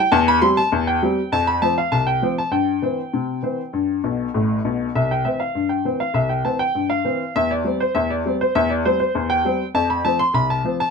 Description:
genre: ragtime piano.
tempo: 100 BPM.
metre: 2/4.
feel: straight.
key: C major.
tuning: A4 = 435 Hz.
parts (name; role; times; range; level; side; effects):
warm upright piano; solo; 0.0-10.9 s; A1 to C6; -18 LUFS; left 1 dB; none.
room: light reverb.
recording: minimal, uncompressed stereo recording.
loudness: -18 LUFS.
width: side -5 dB against mid.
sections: 0.0-5.0 A section; 5.0-10.9 B section.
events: upright piano fill 4.0-5.0.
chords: 0.1 C/E; 1.3 F5; 2.5 C/G; 3.7 G; 5.0 C; 7.4 C/E; 9.7 F5.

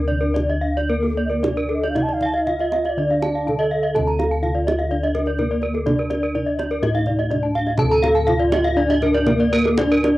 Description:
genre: Balinese gamelan.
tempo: 123 BPM.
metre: 4/4.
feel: uneven beats.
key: D pelog.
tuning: A4 = 439 Hz.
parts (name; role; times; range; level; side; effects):
gamelan-type bronze metallophone; melody; 0.0-10.2 s; Bb3 to A4; -22 LUFS; equal; cassette tape.
gamelan-type bronze metallophone; arpeggios; 0.0-10.2 s; A4 to A5; -24 LUFS; left 3 dB; cassette tape, plate reverb.
gamelan-type bossed gongs; bass; 0.0-10.2 s; D2 to A4; -24 LUFS; equal; none.
gamelan-type bronze metallophone; arpeggios; 0.1-10.0 s; Bb4 to Bb5; -25 LUFS; right 2 dB; cassette tape, plate reverb.
kendang; percussion; 0.1-10.2 s; none; -27 LUFS; right 2 dB; none.
mellow hollow xiao; second line; 1.3-3.7 s; D5 to A5; -26 LUFS; right 2 dB; cassette tape.
room: moderate studio reverb, RT60 0.5 s.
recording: home recording on cassette.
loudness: -17 LUFS.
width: side -17 dB against mid.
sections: 0.0-4.0 A section; 4.0-10.2 B section.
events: none.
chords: none.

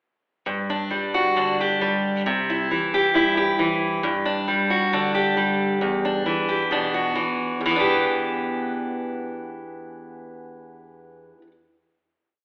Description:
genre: folk.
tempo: 135 BPM.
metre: 4/4.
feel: straight.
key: E minor.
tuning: A4 = 442 Hz.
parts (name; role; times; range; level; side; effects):
fingerpicked steel-string acoustic guitar; solo; 0.5-11.5 s; E2 to G4; -23 LUFS; equal; none.
room: wet recital hall reverb, RT60 1.4 s.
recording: recorded in a church or concert hall, telephone sound.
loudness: -23 LUFS.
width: mono.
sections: 0.5-7.6 verse; 7.6-11.2 final chord.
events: none.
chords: 0.5 G5; 2.3 C; 4.0 G5; 5.8 Em7.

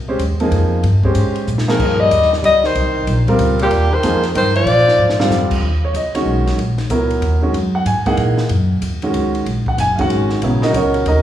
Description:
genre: modal jazz.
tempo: 188 BPM.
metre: 3/4.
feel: swing 63% on 8ths.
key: C phrygian, Eb phrygian from 5.6 s.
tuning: A4 = 440 Hz.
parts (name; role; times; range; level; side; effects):
upright bass; bass; 0.0-11.2 s; Gb1 to Bb2; -18 LUFS; equal; none.
warm baby grand piano; accompaniment; 0.1-11.2 s; Db3 to Ab5; -18 LUFS; right 1 dB; none.
compact cocktail drum kit; drums; 0.2-11.2 s; crash cymbal, hi-hat, kick drum, ride cymbal, snare drum; -26 LUFS; equal; none.
bright alto saxophone; melody; 1.7-5.3 s; G4 to Eb5; -15 LUFS; left 2 dB; none.
breathy tenor saxophone; second line; 1.7-5.3 s; Bb2 to G3; -21 LUFS; right 2 dB; none.
room: wet recital hall reverb, RT60 1.7 s.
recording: recorded in a church or concert hall, studio reverb.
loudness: -13 LUFS.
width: side -11 dB against mid.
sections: 0.0-5.6 A section; 5.6-11.2 B section.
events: drum fill 1.5-1.8, 5.0-5.3.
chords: 0.0 Cm7; 4.7 Bb7; 5.6 Ebm7.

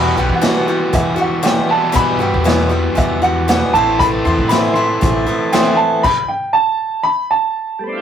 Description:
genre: folk rock and heartland rock.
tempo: 117 BPM.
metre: 4/4.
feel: straight.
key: unclear.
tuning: A4 = 441 Hz.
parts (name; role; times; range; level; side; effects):
dark grand piano; melody; 0.0-7.8 s; E5 to C6; -17 LUFS; right 1 dB; none.
picked acoustic archtop guitar; accompaniment; 0.0-6.1 s; E2 to F#4; -18 LUFS; left 1 dB; none.
raw garage guitar; riff; 0.0-5.8 s; E2 to E4; -20 LUFS; equal; overdrive, spring reverb.
upright bass; bass; 0.0-5.2 s; A1 to E3; -21 LUFS; equal; none.
vintage drum kit; drums; 0.3-6.2 s; crash cymbal, hi-hat, kick drum, snare drum; -20 LUFS; right 1 dB; none.
tonewheel organ; sustained chords; 4.0-8.0 s; G3 to A4; -24 LUFS; right 1 dB; slow rotary speaker.
room: moderate studio reverb, RT60 0.6 s.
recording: rough rehearsal-room recording.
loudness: -13 LUFS.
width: side -9 dB against mid.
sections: 0.0-8.0 A section.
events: stop 6.1-8.0.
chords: 0.0 Emadd9; 3.7 Amadd9.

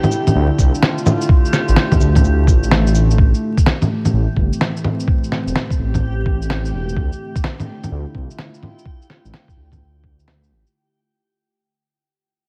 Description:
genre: future garage.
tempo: 127 BPM.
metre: 4/4.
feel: swing 65% on 16ths.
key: D minor.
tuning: A4 = 435 Hz.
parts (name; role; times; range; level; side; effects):
warbly tape-like pad; sustained chords; 0.0-10.7 s; A2 to F4; -27 LUFS; equal; chorus, built-in reverb, sidechain pumping.
electronic bongos, shaker, cabasa and snare drum; drums; 0.0-10.7 s; none; -20 LUFS; equal; none.
backwards swelling texture; texture; 0.0-10.8 s; G4; -32 LUFS; equal; built-in reverb.
dark detuned saw bass; bass; 0.4-10.6 s; E1 to D2; -19 LUFS; equal; sidechain pumping.
electronic kick drum; drums; 0.6-10.2 s; none; -18 LUFS; equal; none.
room: light reverb.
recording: vinyl crackle.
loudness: -16 LUFS.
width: mono.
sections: 0.0-3.2 A section; 3.2-10.7 B section.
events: fade-out 3.2-10.7.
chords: 0.0 Dmadd9; 3.2 Am7; 7.0 Dm9.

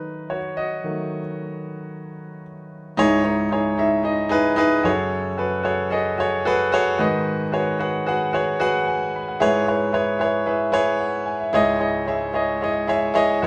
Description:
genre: pop.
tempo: 112 BPM.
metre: 4/4.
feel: straight.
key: C# minor.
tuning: A4 = 441 Hz.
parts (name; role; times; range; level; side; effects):
warm concert grand piano; solo; 0.0-13.5 s; C#2 to B5; -22 LUFS; equal; none.
room: wet studio reverb, RT60 0.6 s.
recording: band playing live in one room.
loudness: -22 LUFS.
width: mono.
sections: 0.0-3.0 A section; 3.0-13.5 B section.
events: grand piano solo 0.0-3.0.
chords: 0.0 D#dim; 3.0 C#madd9; 4.9 F#madd9; 7.0 G#m7; 9.4 E6/G#; 11.6 C#madd9.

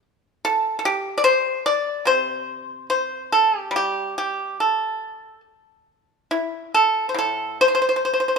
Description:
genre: chinese traditional, Chinese solo plucked strings.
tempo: 68-75 BPM.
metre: 4/4.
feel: rubato.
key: unclear.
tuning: A4 = 438 Hz.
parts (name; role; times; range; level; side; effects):
pipa; solo; 0.4-8.4 s; A2 to D5; -19 LUFS; equal; none.
room: light reverb.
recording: minimal, uncompressed stereo recording.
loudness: -19 LUFS.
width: side -4 dB against mid.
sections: 0.0-8.4 A section.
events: none.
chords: none.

